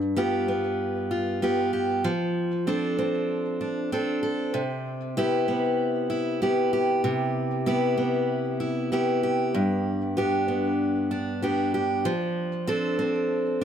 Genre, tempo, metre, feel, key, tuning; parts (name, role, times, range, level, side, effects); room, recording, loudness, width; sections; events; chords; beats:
folktronica; 96 BPM; 4/4; straight; C major; A4 = 439 Hz
picked steel-string acoustic guitar; solo; 0.0-13.6 s; G2 to A4; -23 LUFS; equal
moderate echo chamber reverb, RT60 1.3 s; -23 LUFS; side -8 dB against mid
0.0-13.6 A section
0.0 G7; 2.0 F6; 4.5 Cmaj7; 9.5 G; 12.0 F6
0.17 0.80 1.42 | 2.05 2.67 3.30 3.92 | 4.55 5.17 5.80 6.42 | 7.05 7.67 8.30 8.92 | 9.55 10.17 10.80 11.42 | 12.05 12.67 13.30